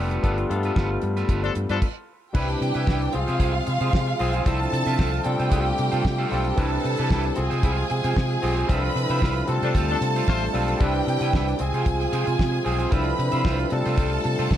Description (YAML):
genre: disco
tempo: 114 BPM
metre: 4/4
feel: straight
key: unclear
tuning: A4 = 440 Hz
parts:
  - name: barky tine electric piano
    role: accompaniment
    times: 0.0-14.6 s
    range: F3 to B4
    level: -29 LUFS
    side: left 4 dB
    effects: none
  - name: electric guitar at the edge of break-up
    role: accompaniment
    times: 0.0-14.5 s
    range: D4 to E5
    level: -32 LUFS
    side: right 3 dB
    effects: spring reverb
  - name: mellow French horn section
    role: sustained chords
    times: 0.0-14.6 s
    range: C3 to B4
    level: -31 LUFS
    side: right 2 dB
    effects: stereo widening
  - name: fingered electric bass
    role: bass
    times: 0.0-14.6 s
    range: F1 to C3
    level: -26 LUFS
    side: equal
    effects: none
  - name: damped 70s drum kit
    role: drums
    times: 0.1-14.6 s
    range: crash cymbal, hi-hat, kick drum, snare drum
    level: -24 LUFS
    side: equal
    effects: none
  - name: clear horn section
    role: stabs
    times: 1.4-1.8, 9.6-10.4 s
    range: F3 to C5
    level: -29 LUFS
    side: left 6 dB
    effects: none
  - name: rich studio violin section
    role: second line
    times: 2.3-14.6 s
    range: F4 to B5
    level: -28 LUFS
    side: right 2 dB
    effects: none
room: light reverb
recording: none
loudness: -21 LUFS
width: side -11 dB against mid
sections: 0.0-2.4 A section; 2.4-14.6 B section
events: band accent 0.2-2.4, 8.7-10.8; stop 1.8-2.4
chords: 0.0 G9; 2.4 Cmaj9; 3.1 Fm/C; 4.5 Dm9/C; 5.3 G9sus4/C; 6.6 Cmaj9; 7.4 Fm/C; 8.7 Dm9/C; 9.5 G9sus4; 10.8 Cmaj9; 11.6 Fm/C; 12.9 Dm9/C; 13.7 G9sus4/C